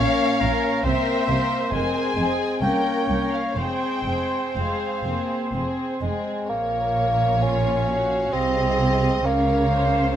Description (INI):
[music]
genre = classical, slow romantic movement for symphony orchestra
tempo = 61-69 BPM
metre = 3/4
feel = rubato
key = F minor, Bb minor from 6.5 s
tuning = A4 = 440 Hz
[part]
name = dark studio violin section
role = melody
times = 0.0-10.2 s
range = Db5 to Ab5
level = -29 LUFS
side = left 3 dB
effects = none
[part]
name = clear oboe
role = second line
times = 0.0-6.2 s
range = Bb4 to Db5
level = -30 LUFS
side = right 2 dB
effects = none
[part]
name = dark studio violin section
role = second line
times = 0.0-10.2 s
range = C4 to Eb5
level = -30 LUFS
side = left 3 dB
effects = none
[part]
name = warm bassoon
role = accompaniment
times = 0.0-10.2 s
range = Ab3 to Db4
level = -25 LUFS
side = right 1 dB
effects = none
[part]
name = warm studio viola section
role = accompaniment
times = 0.0-10.2 s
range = F4 to Db5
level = -31 LUFS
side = right 2 dB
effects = none
[part]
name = warm French horn section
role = sustained chords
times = 0.0-6.5 s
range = Ab3 to Db4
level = -28 LUFS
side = left 3 dB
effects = none
[part]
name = warm studio cello section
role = bass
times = 0.0-10.2 s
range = C2 to Db3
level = -28 LUFS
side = right 2 dB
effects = none
[part]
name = warm studio double bass section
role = bass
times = 0.0-10.2 s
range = F1 to Db2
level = -28 LUFS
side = right 2 dB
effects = none
[sound]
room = moderate recital hall reverb, RT60 1.4 s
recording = none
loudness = -20 LUFS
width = side -10 dB against mid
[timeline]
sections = 0.0-6.5 A section; 6.5-10.2 B section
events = none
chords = 0.0 Bbm; 0.8 C7; 1.7 Fm; 2.6 C5; 3.6 Fm; 6.5 Bbm; 9.3 Bbm/Db